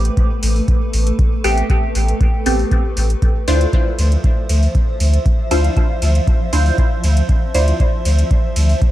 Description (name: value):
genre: dub techno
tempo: 118 BPM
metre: 4/4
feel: straight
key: unclear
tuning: A4 = 440 Hz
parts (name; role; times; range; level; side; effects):
- granular cloud pad; sustained chords; 0.0-8.9 s; F3 to E5; -25 LUFS; equal; built-in reverb, sidechain pumping
- soft dub sub bass; bass; 0.0-8.7 s; A1 to D2; -14 LUFS; equal; sidechain pumping
- booming analog drum machine; drums; 0.1-8.9 s; hi-hat, ride cymbal; -28 LUFS; right 1 dB; none
- electronic kick drum; drums; 0.2-8.9 s; none; -16 LUFS; equal; none
- filtered dub chord stab; stabs; 1.4-7.7 s; A3 to C5; -22 LUFS; equal; phaser, sidechain pumping, dub echo
room: digital ambience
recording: vinyl crackle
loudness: -13 LUFS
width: side -14 dB against mid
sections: 0.0-8.9 A section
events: none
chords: 0.0 Am9; 3.2 Dm9